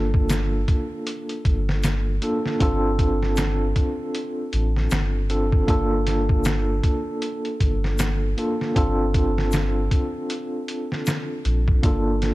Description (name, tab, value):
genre	trip hop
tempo	78 BPM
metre	4/4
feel	swing 59% on 16ths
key	G minor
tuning	A4 = 441 Hz
part	mellow tine electric piano	accompaniment	0.0-12.3 s	Bb3 to A4	-25 LUFS	equal	tremolo, vintage 12-bit sampler grit, tape echo
part	soft dub sub bass	bass	0.0-12.3 s	G1 to Bb1	-23 LUFS	equal	none
part	trip hop sampler-style drum kit	drums	0.1-12.3 s	hi-hat, kick drum, snare drum	-24 LUFS	equal	none
part	egg shaker	percussion	0.3-11.2 s	none	-36 LUFS	left 11 dB	none
room	digital ambience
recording	dark, warm production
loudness	-20 LUFS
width	side -18 dB against mid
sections	0.0-12.3 A section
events	none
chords	0.0 Gm9; 2.6 G9sus4; 5.7 Gm9; 8.8 Bbmaj7/G (rootless); 11.8 Gm9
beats	0.29 1.06 1.83 | 2.60 3.37 4.14 4.91 | 5.68 6.45 7.22 7.99 | 8.76 9.52 10.29 11.06 | 11.83